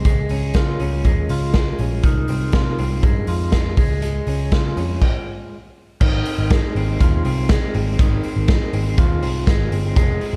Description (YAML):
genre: jangly indie pop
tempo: 121 BPM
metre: 4/4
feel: straight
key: Ab major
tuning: A4 = 440 Hz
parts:
  - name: electric guitar through a small old amp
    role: arpeggios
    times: 0.0-10.4 s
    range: Eb3 to G4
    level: -28 LUFS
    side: equal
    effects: tremolo
  - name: raw garage drum kit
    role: drums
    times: 0.0-10.3 s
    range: crash cymbal, hi-hat, kick drum, ride cymbal, snare drum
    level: -21 LUFS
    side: equal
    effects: none
  - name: vintage muted picked electric bass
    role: bass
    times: 0.1-10.4 s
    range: F1 to Db3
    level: -24 LUFS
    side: equal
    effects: none
room: small room ambience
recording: none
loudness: -19 LUFS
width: mono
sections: 0.0-6.0 A section; 6.0-10.4 B section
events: stop 5.0-6.0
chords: 0.1 Db; 2.0 Fm7/C; 3.8 Db; 6.0 Ab6